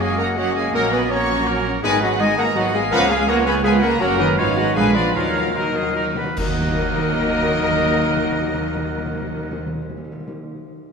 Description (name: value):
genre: classical, dramatic, fast romantic movement for symphony orchestra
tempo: 143-167 BPM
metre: 3/4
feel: straight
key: Eb minor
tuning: A4 = 440 Hz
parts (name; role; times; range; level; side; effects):
- rich symphonic violin section; melody; 0.0-9.6 s; Eb5 to Db6; -26 LUFS; left 2 dB; none
- clear oboe; second line; 0.0-9.6 s; Ab4 to Gb5; -28 LUFS; right 2 dB; none
- mellow clarinet; second line; 0.0-9.6 s; Eb4 to Eb5; -26 LUFS; equal; none
- silver concert flute; second line; 0.0-9.6 s; Bb4 to Bb5; -27 LUFS; left 3 dB; none
- warm symphonic violin section; second line; 0.0-9.6 s; Bb3 to Bb4; -28 LUFS; left 2 dB; none
- rich studio viola section; accompaniment; 0.0-9.6 s; D3 to Db4; -27 LUFS; right 1 dB; none
- rich studio double bass section; bass; 0.0-9.6 s; Gb1 to Eb2; -28 LUFS; right 4 dB; none
- rich symphonic cello section; bass; 0.0-9.6 s; Eb3 to Db4; -25 LUFS; right 3 dB; none
- mellow French horn section; sustained chords; 0.7-9.6 s; Eb3 to Eb4; -28 LUFS; left 4 dB; none
- warm trumpet section; stabs; 0.7-9.6 s; Bb4 to Cb5; -27 LUFS; right 1 dB; none
- timpani; percussion; 5.2-10.3 s; Eb3; -29 LUFS; equal; none
- clash cymbals and concert bass drum; percussion; 6.4-7.2 s; none; -30 LUFS; equal; none
room: wet concert hall reverb, RT60 2.1 s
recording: minimal, uncompressed stereo recording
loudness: -17 LUFS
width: side -5 dB against mid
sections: 0.0-6.4 A section; 6.4-8.8 B section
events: slowing down 3.5-6.4; timpani fill 5.2-6.4; band accent 6.4-6.8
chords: 0.0 Gb; 0.7 Gb/Bb; 1.8 Abm; 2.9 Db7; 4.0 Gb; 4.4 Abm; 4.8 Bb7b9; 5.2 Ebm